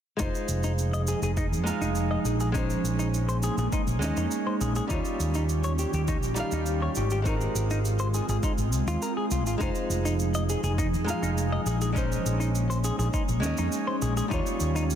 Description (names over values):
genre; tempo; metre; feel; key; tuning
sunset chillout; 102 BPM; 4/4; straight; F minor; A4 = 439 Hz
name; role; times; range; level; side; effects
nylon-string guitar; accompaniment; 0.2-15.0 s; G3 to F5; -32 LUFS; moving between left 3 dB and right 3 dB; auto-pan, low-pass filter, digital delay
ethereal airy pad; sustained chords; 0.6-15.0 s; Eb3 to Ab4; -32 LUFS; right 1 dB; ensemble chorus, built-in reverb
clean electric guitar; arpeggios; 0.2-14.8 s; Eb4 to Eb5; -34 LUFS; left 2 dB; low-pass filter, digital delay
mellow fretless electric bass; bass; 0.2-15.0 s; F1 to F2; -28 LUFS; equal; ensemble chorus
cabasa; drums; 0.2-15.0 s; none; -38 LUFS; right 4 dB; none
electronic kick drum; drums; 0.2-14.4 s; none; -30 LUFS; equal; overdrive
room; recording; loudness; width
light reverb, small room ambience; dense, heavily limited modern master; -24 LUFS; side -9 dB against mid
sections
0.2-15.0 A section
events
none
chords
0.2 Fm7; 2.5 Bbm11; 4.9 Eb9; 7.3 Ab69; 9.6 Fm7; 12.0 Bbm11; 14.3 Eb9